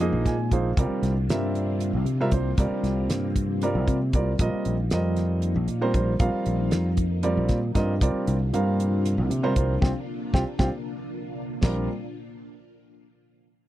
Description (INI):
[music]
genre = electric jazz fusion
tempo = 232 BPM (eighths)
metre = 7/8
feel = straight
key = Bb mixolydian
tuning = A4 = 442 Hz
[part]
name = dark grand piano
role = accompaniment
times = 0.0-11.9 s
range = F3 to Ab5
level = -27 LUFS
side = right 2 dB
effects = none
[part]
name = string machine, cellos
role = sustained chords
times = 0.0-11.9 s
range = Bb2 to F4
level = -33 LUFS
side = left 1 dB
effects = phaser, ensemble chorus
[part]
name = fingered electric bass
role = bass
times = 0.0-11.9 s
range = Bb1 to C3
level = -25 LUFS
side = equal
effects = none
[part]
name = damped 70s drum kit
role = drums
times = 0.0-11.8 s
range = crash cymbal, hi-hat, kick drum, snare drum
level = -24 LUFS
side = equal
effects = none
[sound]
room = little or no reverb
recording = dry, close 1970s-style studio recording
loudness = -22 LUFS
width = side -14 dB against mid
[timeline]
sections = 0.0-11.6 A section; 11.6-13.4 B section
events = grand piano fill 0.0-0.8; band accent 9.8-11.6; drum fill 10.1-11.6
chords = 0.0 Bb9sus4; 0.8 C9sus4; 4.4 Bbsus24; 8.0 C9sus4; 11.6 Bb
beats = 0.00 0.26 0.52 | 0.78 1.03 1.29 1.55 1.81 2.07 2.33 | 2.59 2.85 3.10 3.36 3.62 3.88 4.14 | 4.40 4.66 4.91 5.17 5.43 5.69 5.95 | 6.21 6.46 6.72 6.98 7.24 7.50 7.76 | 8.01 8.27 8.53 8.79 9.05 9.31 9.56 | 9.82 10.08 10.34 10.60 10.86 11.11 11.37 | 11.63